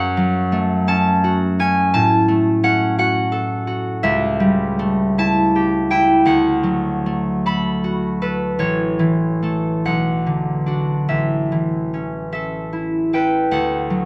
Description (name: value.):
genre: classical, solo harp piece.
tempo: 45-58 BPM (dotted quarters).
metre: 6/8.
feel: rubato.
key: F# minor.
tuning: A4 = 438 Hz.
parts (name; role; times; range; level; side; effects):
concert harp; solo; 0.0-14.1 s; A1 to B5; -18 LUFS; equal; none.
room: light reverb.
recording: close, detailed microphones.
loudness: -18 LUFS.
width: mono.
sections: 0.0-13.5 A section.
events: none.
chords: 0.0 F#m; 1.9 F#m/A; 4.0 A7/C#; 6.2 D; 8.6 A; 9.8 Bm; 11.1 A; 13.5 D.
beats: 0.89 | 1.95 2.98 | 4.04 5.18 | 6.25 7.44 | 8.57 9.84 | 11.08 12.34 | 13.53.